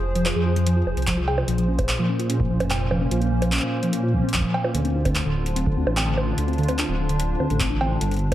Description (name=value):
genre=IDM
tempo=147 BPM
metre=4/4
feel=straight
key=unclear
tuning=A4 = 440 Hz
part: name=hollow soft pad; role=sustained chords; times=0.0-8.3 s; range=Bb2 to C5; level=-28 LUFS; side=right 1 dB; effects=ensemble chorus
part: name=dark detuned saw bass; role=bass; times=0.0-8.3 s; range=D1 to Bb2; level=-24 LUFS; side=equal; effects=none
part: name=mellow tine electric piano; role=arpeggios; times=0.2-8.3 s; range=D3 to Ab4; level=-26 LUFS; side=left 1 dB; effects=medium stereo tremolo, low-pass filter, dub echo
part: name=booming analog drum machine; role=drums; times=0.2-8.3 s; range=bongos, cowbell, handclaps, hi-hat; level=-27 LUFS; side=right 2 dB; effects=tape echo
part: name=electronic kick drum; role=drums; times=1.1-8.3 s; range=none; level=-26 LUFS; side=equal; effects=none
room=moderate spring reverb, RT60 1.8 s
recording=echo-heavy mix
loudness=-20 LUFS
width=side -13 dB against mid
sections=0.0-8.3 A section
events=none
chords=0.0 Fm; 1.5 Bbmadd9; 4.7 Dm7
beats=0.26 0.67 1.07 | 1.48 1.89 2.30 2.71 | 3.11 3.52 3.93 4.34 | 4.75 5.15 5.56 5.97 | 6.38 6.79 7.20 7.60 | 8.01